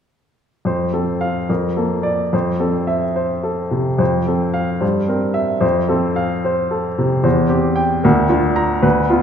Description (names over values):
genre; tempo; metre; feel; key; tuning
classical, romantic character piece for solo piano; 74 BPM (dotted quarters); 6/8; rubato; F major; A4 = 440 Hz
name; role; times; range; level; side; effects
clear baby grand piano; solo; 0.7-9.2 s; D2 to Bb5; -15 LUFS; equal; none
room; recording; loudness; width
wet concert hall reverb, RT60 1.9 s; recorded in a church or concert hall; -15 LUFS; side -8 dB against mid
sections
0.6-9.2 A section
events
none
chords
0.6 F; 1.5 Bbmaj7/F; 2.3 C6/F; 4.0 F; 4.8 C7/G; 5.6 F; 7.2 C/E; 8.0 Bb/D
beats
| 0.65 1.49 | 2.33 3.16 | 4.00 4.82 | 5.63 6.44 | 7.25 8.04 | 8.85